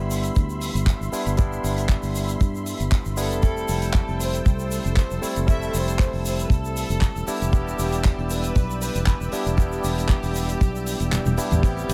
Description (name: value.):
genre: nu-disco, nu disco.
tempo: 117 BPM.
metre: 4/4.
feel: swing 53% on 16ths.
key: unclear.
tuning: A4 = 441 Hz.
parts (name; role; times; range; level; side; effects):
barky tine electric piano; accompaniment; 0.0-11.9 s; G3 to E4; -31 LUFS; equal; sidechain pumping, tape echo.
lush unison pad; sustained chords; 0.0-11.9 s; A4 to E6; -38 LUFS; equal; chorus, vintage 12-bit sampler grit, sidechain pumping.
fingered electric bass; bass; 0.0-11.9 s; E1 to G2; -28 LUFS; equal; none.
damped 70s drum kit; drums; 0.1-11.9 s; handclaps, hi-hat, ride cymbal, shaker, toms; -33 LUFS; equal; studio reverb.
egg shaker; percussion; 0.1-11.9 s; none; -45 LUFS; equal; none.
kick drum; drums; 0.4-11.7 s; none; -21 LUFS; equal; studio reverb.
rich studio violin section; melody; 3.2-11.9 s; G4 to E5; -34 LUFS; equal; digital delay.
room: studio reverb.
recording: none.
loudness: -23 LUFS.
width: mono.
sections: 0.0-11.9 A section.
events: kick drops out 11.1-11.6; drum fill 11.1-11.6.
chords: 0.0 Cmaj7/G; 3.4 Fmaj9; 7.3 Em7.